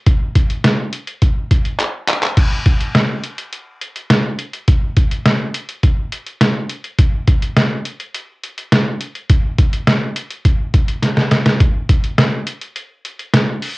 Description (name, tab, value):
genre	pop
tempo	104 BPM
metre	4/4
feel	straight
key	none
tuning	none
part	trip hop sampler-style drum kit	drums	0.1-13.8 s	crash cymbal, handclaps, hi-hat, kick drum, snare drum	-14 LUFS	equal	cassette tape
room	moderate booth ambience, RT60 0.2 s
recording	home recording on cassette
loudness	-14 LUFS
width	side -23 dB against mid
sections	0.0-2.4 A section; 2.4-13.8 B section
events	drum fill 1.8-2.4, 11.0-11.6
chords	none